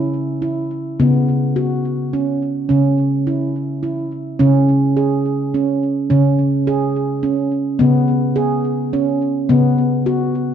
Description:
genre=world meditative, meditative tuned percussion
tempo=70 BPM (dotted quarters)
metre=6/8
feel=straight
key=C# minor pentatonic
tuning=A4 = 440 Hz
part: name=handpan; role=solo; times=0.0-10.5 s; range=C#3 to G#4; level=-15 LUFS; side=equal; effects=ping-pong delay
room=wet concert hall reverb, RT60 1.8 s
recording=worn, warbling old tape, cassette tape, warbly pitch drift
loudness=-15 LUFS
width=side -8 dB against mid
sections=0.0-4.4 A section; 4.4-10.5 B section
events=none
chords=0.0 C#m; 1.0 B5/C#; 2.7 C#m; 4.4 C#5; 7.8 G#madd11/C#; 9.5 B5/C#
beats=0.14 | 0.99 1.84 | 2.70 3.55 | 4.40 5.25 | 6.10 6.95 | 7.80 8.65 | 9.50 10.35

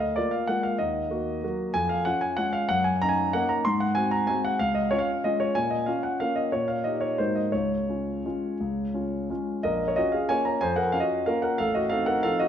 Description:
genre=classical, piano waltz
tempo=164-199 BPM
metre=3/4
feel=rubato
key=Db major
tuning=A4 = 440 Hz
part: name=warm grand piano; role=solo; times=0.0-12.5 s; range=A1 to C6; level=-24 LUFS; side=equal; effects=none
room=moderate recital hall reverb, RT60 1.5 s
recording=none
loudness=-24 LUFS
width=side -9 dB against mid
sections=0.0-9.6 A section; 9.6-12.5 B section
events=none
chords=0.0 Bb7/D; 0.8 Ebm; 1.7 Db/F; 2.7 Ebm7/Gb; 3.7 Ab7; 4.6 Db; 5.6 Bbm; 6.5 Eb/Bb; 7.2 Ab9; 7.5 Db; 9.6 Bbm; 11.6 F7/A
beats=0.17 0.49 | 0.80 1.11 1.43 | 1.75 2.06 2.38 | 2.70 3.01 3.34 | 3.65 3.96 4.29 | 4.60 4.91 5.24 | 5.55 5.87 6.20 | 6.52 6.85 7.19 | 7.53 7.88 8.25 | 8.60 8.94 9.29 | 9.64 9.97 10.30 | 10.62 10.94 11.27 | 11.60 11.92 12.25

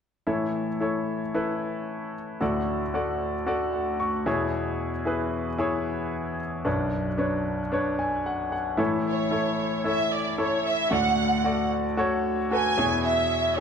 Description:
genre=pop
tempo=113 BPM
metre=4/4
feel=straight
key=A major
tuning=A4 = 440 Hz
part: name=clear concert grand piano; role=accompaniment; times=0.3-13.6 s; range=B1 to C#6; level=-25 LUFS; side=left 1 dB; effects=none
part: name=warm studio violin section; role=melody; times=9.1-13.6 s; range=C#5 to G#5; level=-25 LUFS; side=right 3 dB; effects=none
room=wet large studio reverb, RT60 1.3 s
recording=dark, warm production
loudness=-24 LUFS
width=side -7 dB against mid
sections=0.3-8.8 A section; 8.8-13.6 B section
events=grand piano fill 3.5-4.5, 7.7-8.8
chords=0.3 A; 2.4 D; 4.3 E6; 6.7 Bmadd9; 8.8 A; 10.9 D; 12.8 E6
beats=| 0.28 0.81 1.34 1.87 | 2.40 2.94 3.47 4.00 | 4.54 5.07 5.60 6.13 | 6.67 7.20 7.73 8.26 | 8.80 9.33 9.86 10.39 | 10.93 11.46 11.99 12.52 | 13.05 13.59

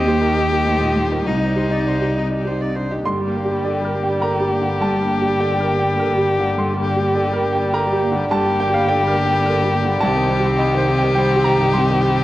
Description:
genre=neoclassical piano and strings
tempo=103 BPM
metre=3/4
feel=rubato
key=G minor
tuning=A4 = 440 Hz
part: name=warm violin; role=melody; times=0.0-12.2 s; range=Eb4 to G4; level=-20 LUFS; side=left 2 dB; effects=cassette tape
part: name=warm cello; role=second line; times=0.0-12.2 s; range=D3 to Bb3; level=-29 LUFS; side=right 3 dB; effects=none
part: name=rich viola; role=accompaniment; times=0.0-12.2 s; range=C3 to Eb5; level=-28 LUFS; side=right 2 dB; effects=none
part: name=warm concert grand piano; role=accompaniment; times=0.0-12.2 s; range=C2 to C6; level=-22 LUFS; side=right 1 dB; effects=none
part: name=warm chamber string section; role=sustained chords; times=0.0-12.2 s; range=G3 to Eb5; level=-30 LUFS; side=equal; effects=none
part: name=dark double bass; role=bass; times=0.0-12.2 s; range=G1 to Eb2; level=-24 LUFS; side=equal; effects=none
part: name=vibraphone with medium mallets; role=arpeggios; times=0.1-12.2 s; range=C4 to G5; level=-27 LUFS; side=right 2 dB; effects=none
room=light reverb, small room ambience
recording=home recording on cassette, nothing above 10.9 kHz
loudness=-16 LUFS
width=side -15 dB against mid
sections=0.0-3.1 A section; 3.1-12.2 B section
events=none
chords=0.0 Eb6; 1.3 Cmadd9; 3.1 Gm; 10.0 Cm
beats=0.07 0.66 | 1.26 1.86 2.46 | 3.06 3.65 4.23 | 4.82 5.40 5.98 | 6.59 7.16 7.74 | 8.32 8.89 9.45 | 10.02 10.59 11.16 | 11.73

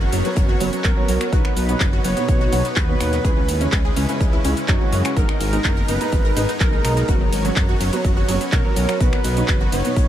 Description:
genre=progressive house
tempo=125 BPM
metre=4/4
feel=straight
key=unclear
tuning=A4 = 439 Hz
part: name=supersaw pad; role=sustained chords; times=0.0-10.1 s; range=F#3 to A#5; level=-29 LUFS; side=equal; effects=sidechain pumping
part: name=wide unison pluck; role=arpeggios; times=0.0-10.1 s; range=F#3 to A#4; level=-27 LUFS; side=equal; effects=analog chorus, sidechain pumping, tape echo
part: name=fat analog bass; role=bass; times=0.0-10.1 s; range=F#1 to F#2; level=-23 LUFS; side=equal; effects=sidechain pumping
part: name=big-room dance drum kit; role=drums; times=0.1-10.1 s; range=finger snaps, handclaps, hi-hat, ride cymbal, shaker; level=-27 LUFS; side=equal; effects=sidechain pumping on hats, sidechain pumping on cymbals, sidechain pumping on perc
part: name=soft brush drum kit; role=drums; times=0.1-10.1 s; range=hi-hat, snare drum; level=-38 LUFS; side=left 3 dB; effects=none
part: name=dark baby grand piano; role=stabs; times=0.2-10.1 s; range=G#2 to A#5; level=-27 LUFS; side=right 3 dB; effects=ensemble chorus, sidechain pumping, tape echo
part: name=electronic kick drum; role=drums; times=0.4-10.1 s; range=none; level=-19 LUFS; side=equal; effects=none
part: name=warm velvety synth lead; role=melody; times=0.8-10.1 s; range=F#4 to C#5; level=-27 LUFS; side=equal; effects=chorus, sidechain pumping, tape echo
room=light reverb, digital ambience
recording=none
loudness=-16 LUFS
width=side -11 dB against mid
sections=0.0-10.1 A section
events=none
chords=0.0 F#sus4; 1.3 B; 3.2 C#m7; 5.2 G#madd9; 7.1 F#sus4; 9.0 B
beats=0.37 0.85 | 1.33 1.81 2.29 2.77 | 3.25 3.73 4.21 4.69 | 5.17 5.65 6.13 6.61 | 7.09 7.57 8.05 8.53 | 9.01 9.49 9.97

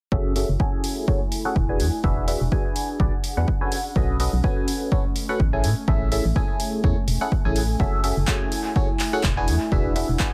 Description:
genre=piano house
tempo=125 BPM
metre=4/4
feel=swing 56% on 16ths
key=unclear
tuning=A4 = 440 Hz
part: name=barking FM electric piano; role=riff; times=0.1-10.3 s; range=C#4 to G#5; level=-30 LUFS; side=equal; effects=phaser, vintage 12-bit sampler grit, sidechain pumping, low-pass filter, analog delay
part: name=organ-like FM bass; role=bass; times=0.1-10.2 s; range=E1 to A2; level=-26 LUFS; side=equal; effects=sidechain pumping
part: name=electronic kick drum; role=drums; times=0.1-10.3 s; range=none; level=-26 LUFS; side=equal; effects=none
part: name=warbly tape-like pad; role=texture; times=0.5-10.3 s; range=A3 to G#5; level=-34 LUFS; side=equal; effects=chorus, built-in reverb, phaser, sidechain pumping
part: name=punchy analog drum machine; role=drums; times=0.4-10.3 s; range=handclaps, hi-hat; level=-33 LUFS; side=equal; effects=analog delay
room=light reverb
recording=echo-heavy mix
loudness=-23 LUFS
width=mono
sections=0.1-10.3 A section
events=filter sweep on FM electric piano 0.1-10.3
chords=0.1 E9; 3.7 B9; 5.6 Amaj7; 7.8 E9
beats=| 0.12 0.60 1.08 1.56 | 2.04 2.52 3.00 3.48 | 3.96 4.44 4.92 5.40 | 5.88 6.36 6.84 7.32 | 7.80 8.28 8.76 9.24 | 9.72 10.20

